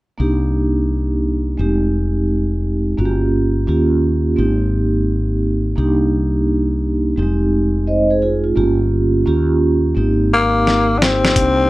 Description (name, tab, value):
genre	hip hop, jazz-hop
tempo	86 BPM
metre	4/4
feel	swing 65% on 16ths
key	F dorian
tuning	A4 = 440 Hz
part	vibraphone with soft mallets	accompaniment	0.2-11.7 s	G3 to Eb5	-17 LUFS	right 2 dB	none
part	mellow fretless electric bass	bass	0.2-11.7 s	F1 to Eb2	-18 LUFS	left 1 dB	none
part	growling tenor saxophone	melody	10.3-11.7 s	Bb3 to D4	-14 LUFS	left 3 dB	none
part	dusty soul sampler-style drum kit	drums	10.7-11.6 s	hi-hat, kick drum, snare drum	-16 LUFS	equal	none
room	light reverb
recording	none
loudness	-14 LUFS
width	side -18 dB against mid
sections	0.2-11.4 A section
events	drum fill 10.7-11.4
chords	0.2 Cm9; 1.6 Fm7; 3.0 Gm7b5; 3.7 Eb9; 4.4 Abmaj9; 5.8 Cm9; 7.2 Fm7; 8.6 Gm7b5; 9.3 Eb9; 10.0 Abmaj9